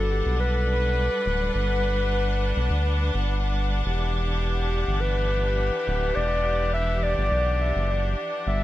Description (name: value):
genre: ambient dub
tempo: 104 BPM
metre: 4/4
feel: straight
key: E minor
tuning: A4 = 440 Hz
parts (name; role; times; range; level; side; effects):
- dark clarinet; melody; 0.0-8.6 s; G4 to E5; -27 LUFS; left 1 dB; dub echo
- bright studio string section; sustained chords; 0.0-8.6 s; E3 to F#5; -29 LUFS; left 2 dB; none
- round analog bass; bass; 0.0-8.6 s; D1 to D2; -25 LUFS; equal; none
room: light reverb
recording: echo-heavy mix, faint mains hum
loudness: -22 LUFS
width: side -15 dB against mid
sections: 0.0-8.6 A section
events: none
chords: 0.0 Gmaj7; 3.9 Em9